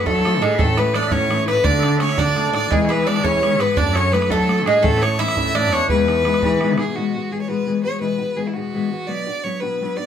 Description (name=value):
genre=celtic folk, Celtic jig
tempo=113 BPM (dotted quarters)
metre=6/8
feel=straight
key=E mixolydian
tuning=A4 = 437 Hz
part: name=clear fiddle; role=melody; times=0.0-10.1 s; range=E4 to E5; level=-21 LUFS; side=left 1 dB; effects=none
part: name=Irish bouzouki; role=second line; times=0.0-6.7 s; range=G#3 to E4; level=-23 LUFS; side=right 4 dB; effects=none
part: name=loud bright bagpipes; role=second line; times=0.0-6.8 s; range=G#4 to E5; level=-27 LUFS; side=left 2 dB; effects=none
part: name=fingerpicked steel-string acoustic guitar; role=accompaniment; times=0.0-10.1 s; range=E2 to G#4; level=-23 LUFS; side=left 3 dB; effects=none
part: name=muted cello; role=bass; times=0.0-6.9 s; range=E2 to F#3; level=-22 LUFS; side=right 1 dB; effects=none
part: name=bodhran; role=percussion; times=0.1-6.9 s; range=none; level=-25 LUFS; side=right 2 dB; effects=none
room=wet studio ambience, RT60 0.5 s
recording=band playing live in one room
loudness=-16 LUFS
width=side -8 dB against mid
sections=0.0-7.0 A section; 7.0-10.1 B section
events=none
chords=0.0 D/F#; 0.6 A; 1.6 D; 2.7 E; 3.8 D/F#; 4.8 A; 5.9 E; 7.0 Eadd9; 9.1 Bm